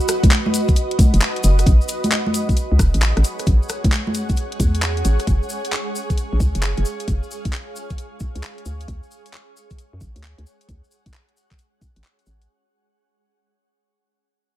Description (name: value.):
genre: UK garage, two-step garage.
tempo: 133 BPM.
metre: 4/4.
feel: swing 66% on 16ths.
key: unclear.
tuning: A4 = 440 Hz.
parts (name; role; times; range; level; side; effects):
cabasa; percussion; 0.0-12.5 s; none; -32 LUFS; left 3 dB; none.
granular cloud pad; texture; 0.0-12.5 s; F#4 to F#5; -27 LUFS; right 2 dB; built-in reverb, sidechain pumping.
garage drum kit; drums; 0.1-12.5 s; congas, handclaps, hi-hat, rim click; -22 LUFS; equal; studio reverb.
electronic kick drum; drums; 0.2-11.9 s; none; -17 LUFS; equal; studio reverb.
hollow knocking FM bass; bass; 1.1-12.5 s; E1 to F#2; -18 LUFS; equal; sidechain pumping.
room: little or no reverb.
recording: none.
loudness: -16 LUFS.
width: side -14 dB against mid.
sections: 0.0-12.5 A section.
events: fade-out 0.0-12.5.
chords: 0.0 B; 1.7 Amaj9; 5.3 F#maj7sus2; 8.7 Dmaj7.